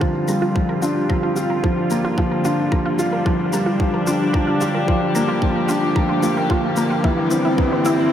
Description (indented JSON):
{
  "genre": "piano and strings electronica",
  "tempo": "111 BPM",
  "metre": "4/4",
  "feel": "straight",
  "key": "G dorian",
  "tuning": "A4 = 441 Hz",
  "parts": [
    { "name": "rich studio string section", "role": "sustained chords", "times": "0.0-8.1 s", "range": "G2 to G4", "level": "-23 LUFS", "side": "left 1 dB", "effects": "sidechain pumping, low-pass filter" },
    { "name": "wide unison pluck", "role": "arpeggios", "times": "0.0-7.9 s", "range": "E4 to Bb5", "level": "-27 LUFS", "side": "right 2 dB", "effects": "sidechain pumping, tape echo" },
    { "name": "felt-muted upright piano", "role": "riff", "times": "0.0-8.1 s", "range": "E3 to F4", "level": "-19 LUFS", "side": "equal", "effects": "tape echo" },
    { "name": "electronic kick drum", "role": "drums", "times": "0.0-7.7 s", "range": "none", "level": "-22 LUFS", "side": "equal", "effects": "overdrive" },
    { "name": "riser", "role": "sound effects", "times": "5.2-8.1 s", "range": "none", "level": "-32 LUFS", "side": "equal", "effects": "none" },
    { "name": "shaker", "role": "drums", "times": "0.3-8.0 s", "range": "none", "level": "-35 LUFS", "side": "left 4 dB", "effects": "overdrive" }
  ],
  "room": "wet cathedral reverb, RT60 5.9 s",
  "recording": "dreamy mix soaked in reverb",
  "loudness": "-17 LUFS",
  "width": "side -10 dB against mid",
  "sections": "0.0-8.1 A section",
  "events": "build-up 0.0-8.1; filter sweep on string section 0.0-8.1",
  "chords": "0.0 Gm7; 7.0 C/G"
}